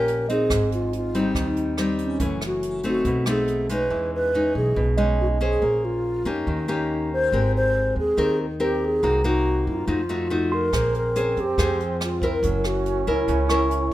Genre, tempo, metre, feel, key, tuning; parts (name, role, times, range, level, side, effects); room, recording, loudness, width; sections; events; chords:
bossa nova; 141 BPM; 4/4; straight; Ab major; A4 = 440 Hz
breathy mellow alto flute; melody; 0.0-13.9 s; Db4 to C5; -24 LUFS; equal
nylon-string guitar; accompaniment; 0.0-13.9 s; Gb2 to C5; -25 LUFS; left 1 dB
upright bass; bass; 0.0-13.9 s; Gb1 to Gb2; -27 LUFS; equal
jazz brush drum kit; drums; 0.1-3.8, 10.7-13.9 s; hi-hat, kick drum, rim click; -30 LUFS; equal
mellow tine electric piano; accompaniment; 0.3-0.7, 3.9-5.6, 9.0-13.9 s; Eb5 to Db6; -31 LUFS; right 3 dB
breathy trombone; second line; 10.7-13.9 s; C4 to Db4; -29 LUFS; right 5 dB
light reverb; minimal, uncompressed stereo recording; -20 LUFS; side -14 dB against mid
0.0-3.9 A section; 3.9-13.9 B section
0.0 Eb7; 0.5 Abmaj7; 2.2 Gbm7; 3.1 B7b9; 3.9 E6; 5.6 Bbm9; 6.5 Eb7; 7.3 Abmaj9; 9.0 Cm7b5; 9.9 F7b9; 10.7 Bbm9; 12.4 Gb7